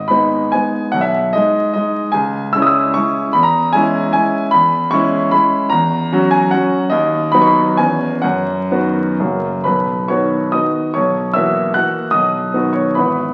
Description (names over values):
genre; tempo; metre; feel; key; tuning
classical, romantic triple-time dance for piano with dotted rhythms; 119-162 BPM; 3/4; rubato; B major from 4.5 s; A4 = 442 Hz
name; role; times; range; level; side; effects
warm concert grand piano; solo; 0.0-13.3 s; G#1 to F#6; -16 LUFS; equal; none
room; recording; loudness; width
wet recital hall reverb, RT60 1.5 s; very old 78 rpm record, vinyl crackle; -16 LUFS; mono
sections
0.0-9.7 A section; 9.7-13.3 B section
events
none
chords
0.0 G#m; 0.9 G#m/B; 2.1 C#m; 3.3 C#m/E; 5.7 F#7/E; 6.9 B/D#; 7.8 C#m7/E; 8.2 B/F#; 9.2 F#; 9.7 B; 10.9 F#7/B; 12.1 B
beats
0.10 0.54 | 0.94 1.34 1.75 | 2.15 2.55 2.96 | 3.35 3.75 4.15 | 4.53 4.92 5.32 | 5.71 6.11 6.52 | 6.90 7.33 7.78 | 8.23 8.71 9.20 | 9.65 10.10 10.54 | 10.94 11.35 11.75 | 12.13 12.54 12.97